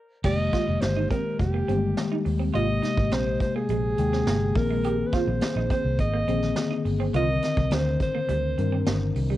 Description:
polished 1980s jazz-funk pop; 104 BPM; 4/4; straight; A4 = 440 Hz
mellow tine electric piano; accompaniment; 0.2-9.4 s; C3 to G5; -28 LUFS; left 5 dB; medium stereo tremolo, wide subtle chorus
semi-hollow electric guitar; riff; 0.2-9.4 s; G3 to G4; -33 LUFS; right 8 dB; analog chorus
vintage muted fingered electric bass; bass; 0.2-9.4 s; F1 to G2; -26 LUFS; equal
vintage brush drum kit; drums; 0.2-9.3 s; crash cymbal, hi-hat, kick drum, snare drum; -29 LUFS; equal; cassette tape
breathy alto saxophone; melody; 0.3-9.1 s; G4 to Eb5; -29 LUFS; right 1 dB; cassette tape
light reverb, studio reverb; home recording on cassette; -22 LUFS; side -14 dB against mid
0.2-9.4 A section
stop 0.0
0.2 Fm11; 2.5 Abmaj9; 4.6 Bb9sus4; 7.1 Cm9
| 0.24 0.82 1.39 1.97 | 2.54 3.12 3.69 4.27 | 4.84 5.42 6.00 6.57 | 7.15 7.72 8.30 8.87

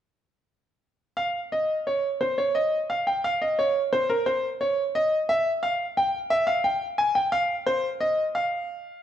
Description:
classical, baroque-style 4-part fugue for grand piano; 58 BPM (dotted quarters); 12/8; straight; F minor; A4 = 440 Hz
bright grand piano; solo; 1.2-9.0 s; Bb4 to Ab5; -23 LUFS; equal
moderate recital hall reverb, RT60 1.4 s; dark, warm production; -23 LUFS; side -10 dB against mid
1.2-9.0 A section
| 1.16 2.20 3.24 4.27 | 5.29 6.31 7.33 8.36

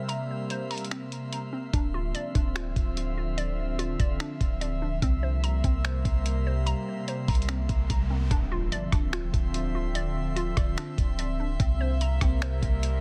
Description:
hip hop, atmospheric cloud-rap; 146 BPM; 4/4; half-time; D minor; A4 = 440 Hz
warbly tape-like pad; sustained chords; 0.0-13.0 s; C3 to E5; -36 LUFS; equal; chorus, built-in reverb, phaser, sidechain pumping
hollow square pluck; arpeggios; 0.0-13.0 s; C4 to Bb5; -39 LUFS; equal; chorus, delay
drifting glass-harmonics texture; texture; 0.0-13.0 s; F4 to C6; -46 LUFS; equal; chorus, built-in reverb
lo-fi sampler-style drum kit; drums; 0.1-12.9 s; finger snaps, hi-hat, kick drum, rim click; -30 LUFS; equal; soft clipping on snare
clean 808-style bass; bass; 1.7-13.0 s; D1 to C2; -31 LUFS; equal
riser and impact; sound effects; 7.6-10.0 s; -43 LUFS; equal
little or no reverb; dense, heavily limited modern master; -28 LUFS; mono
0.0-8.3 A section; 8.3-13.0 B section
break 0.0-1.7; riser 7.6-8.3; impact 8.3-10.0
0.0 C7; 1.7 Dm9; 5.0 C7; 8.3 Dm9; 11.6 C7
| 0.09 0.50 0.91 1.32 | 1.74 2.15 2.56 2.97 | 3.38 3.79 4.20 4.61 | 5.02 5.43 5.84 6.25 | 6.67 7.08 7.49 7.90 | 8.31 8.72 9.13 9.54 | 9.95 10.37 10.78 11.19 | 11.60 12.01 12.42 12.83

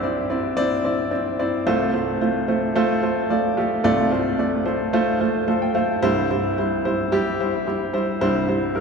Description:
pop; 110 BPM; 4/4; straight; F major; A4 = 440 Hz
clear upright piano; solo; 0.0-8.8 s; C2 to A5; -19 LUFS; equal
wet cathedral reverb, RT60 4.4 s; recorded in a church or concert hall; -19 LUFS; side -5 dB against mid
0.0-8.8 A section
upright piano fill 5.2-6.0
0.0 Cadd9; 1.7 F/C; 6.0 C
0.03 0.57 1.12 | 1.66 2.21 2.75 3.30 | 3.85 4.39 4.94 5.48 | 6.03 6.57 7.12 7.66 | 8.21 8.76

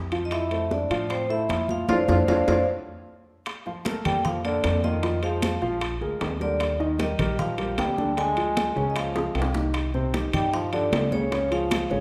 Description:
Afro-Cuban jazz; 153 BPM; 4/4; straight; F major, Bb major from 3.5 s; A4 = 439 Hz
warm concert grand piano; accompaniment; 0.0-12.0 s; C3 to F5; -32 LUFS; equal
upright bass; bass; 0.0-12.0 s; Ab1 to A2; -32 LUFS; equal
timbales; percussion; 0.1-11.9 s; -36 LUFS; equal
clear trombone; second line; 0.2-12.0 s; Db3 to F4; -34 LUFS; equal
vibraphone with medium hard mallets; melody; 0.3-12.0 s; C5 to Ab5; -30 LUFS; equal
bongos; percussion; 0.3-12.0 s; -38 LUFS; equal
congas; percussion; 0.3-11.9 s; -34 LUFS; equal
moderate recital hall reverb, RT60 1.4 s; recorded in a church or concert hall; -25 LUFS; mono
0.0-3.5 A section; 3.5-12.0 B section
drum fill 1.9-3.5, 9.2-9.7; band accent 1.9-3.5
0.3 F6; 3.5 Bbmaj7; 5.0 Fm; 5.8 Bb7; 6.6 Ebmaj7; 8.2 Ddim; 9.0 Db; 9.7 Cmadd9; 11.3 Db
| 0.32 0.71 1.10 1.50 | 1.89 2.28 2.68 3.07 | 3.46 3.85 4.25 4.64 | 5.03 5.43 5.82 6.21 | 6.60 7.00 7.39 7.78 | 8.17 8.57 8.96 9.35 | 9.74 10.14 10.53 10.92 | 11.31 11.71

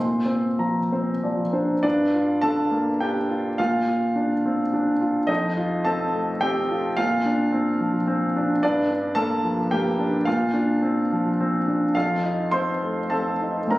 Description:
neoclassical minimalist piano; 93-113 BPM; 3/4; rubato; Bb major; A4 = 441 Hz
clear grand piano; solo; 0.0-13.8 s; F2 to C6; -20 LUFS; equal
light reverb; recorded on a phone in the room, studio reverb, compression; -20 LUFS; side -18 dB against mid
0.0-1.8 A section; 1.8-13.8 B section
0.0 Bbadd9; 1.8 Gm7; 3.6 Bbadd9; 5.3 F7; 7.0 Bbadd9; 8.6 Gm7; 10.3 Bbadd9; 11.9 F7
0.59 1.22 | 1.84 2.43 3.01 | 3.58 4.16 4.73 | 5.29 5.86 6.42 | 6.98 7.54 8.08 | 8.62 9.16 9.71 | 10.27 10.82 11.39 | 11.94 12.52 13.11 | 13.72

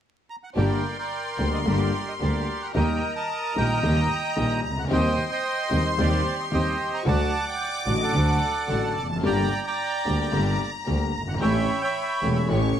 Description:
tango; 111 BPM; 4/4; rubato; G harmonic minor; A4 = 441 Hz
bandoneon; melody; 0.3-12.8 s; G4 to D6; -27 LUFS; right 3 dB; plate reverb
warm studio violin section; second line; 0.6-12.8 s; A5 to D6; -32 LUFS; left 3 dB
clear concert grand piano; accompaniment; 0.6-12.7 s; E1 to G4; -26 LUFS; left 2 dB
rich symphonic string section; stabs; 0.6-12.7 s; A3 to G4; -34 LUFS; left 1 dB
rich double bass; bass; 0.6-12.7 s; E1 to Eb2; -26 LUFS; right 1 dB
moderate club reverb, RT60 0.8 s; vinyl crackle; -22 LUFS; side -9 dB against mid
0.6-12.8 A section
0.0 N.C.; 0.6 Gm; 2.8 Eb; 4.9 Cm/Eb; 7.1 D; 9.2 Gm; 11.4 A7
0.02 | 0.57 1.11 1.66 2.21 | 2.75 3.29 3.83 4.37 | 4.90 5.44 5.98 6.52 | 7.06 7.60 8.14 8.69 | 9.23 9.78 10.33 10.88 | 11.42 11.96 12.50

